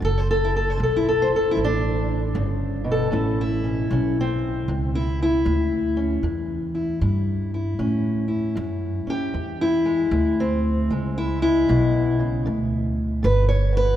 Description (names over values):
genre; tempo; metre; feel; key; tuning
acoustic country blues, solo or duo; 77 BPM; 4/4; swing 64% on 8ths; A mixolydian; A4 = 439 Hz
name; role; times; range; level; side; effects
fingerpicked steel-string acoustic guitar; melody; 0.0-14.0 s; E2 to C#5; -22 LUFS; left 1 dB; none
upright bass; bass; 0.0-14.0 s; F#1 to A2; -23 LUFS; equal; none
room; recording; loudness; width
wet cathedral reverb, RT60 4.8 s; recorded in a church or concert hall; -20 LUFS; side -11 dB against mid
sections
0.0-14.0 A section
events
steel-string acoustic guitar solo 0.0-14.0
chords
0.0 D; 3.1 A; 9.3 E; 12.5 N.C.